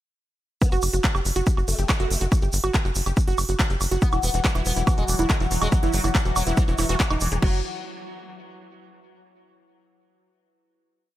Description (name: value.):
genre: psychedelic trance.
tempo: 141 BPM.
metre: 4/4.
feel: straight.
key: unclear.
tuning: A4 = 440 Hz.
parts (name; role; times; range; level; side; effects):
formant-sweep wobble bass; second line; 0.6-2.3 s; A3 to B3; -39 LUFS; left 3 dB; chorus, sidechain pumping, high-pass filter, ping-pong delay.
electronic kick drum; drums; 0.6-7.5 s; none; -21 LUFS; equal; overdrive.
techno drum kit; drums; 0.6-7.5 s; crash cymbal, handclaps, hi-hat, woodblock; -28 LUFS; right 2 dB; none.
tube shaker; percussion; 0.6-7.4 s; none; -34 LUFS; right 2 dB; none.
woody wave-folded pluck; riff; 0.7-7.6 s; D#4 to F#5; -30 LUFS; right 4 dB; chorus, auto-pan, sidechain pumping, ping-pong delay.
tight sequencer bass; bass; 0.7-7.6 s; E1 to G1; -25 LUFS; equal; tube saturation.
sitar; melody; 4.0-7.6 s; E3 to B3; -30 LUFS; left 4 dB; phaser, sidechain pumping, ping-pong delay.
bubbling stepped-filter texture; sustained chords; 4.0-7.5 s; F#3 to F#4; -34 LUFS; left 2 dB; chorus, built-in reverb, sidechain pumping.
room: little or no reverb.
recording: none.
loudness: -20 LUFS.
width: side -14 dB against mid.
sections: 0.6-7.4 groove; 7.4-9.1 final chord.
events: none.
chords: 0.6 N.C.; 4.0 Esus2; 7.4 N.C..